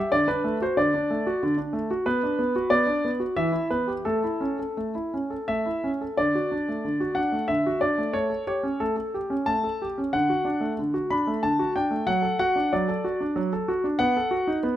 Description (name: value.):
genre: classical-period piano sonatina.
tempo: 92 BPM.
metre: 3/4.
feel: rubato.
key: D major.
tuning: A4 = 440 Hz.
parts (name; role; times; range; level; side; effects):
clear concert grand piano; solo; 0.0-14.8 s; D3 to B5; -23 LUFS; equal; none.
room: light reverb.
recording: close, detailed microphones.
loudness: -23 LUFS.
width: side -12 dB against mid.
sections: 0.0-6.2 A section; 6.2-14.8 B section.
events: none.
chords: 0.1 D; 2.0 Bm; 3.3 Em; 4.0 A; 6.2 D; 8.1 A7; 10.1 D; 12.1 D/F#; 14.0 B7.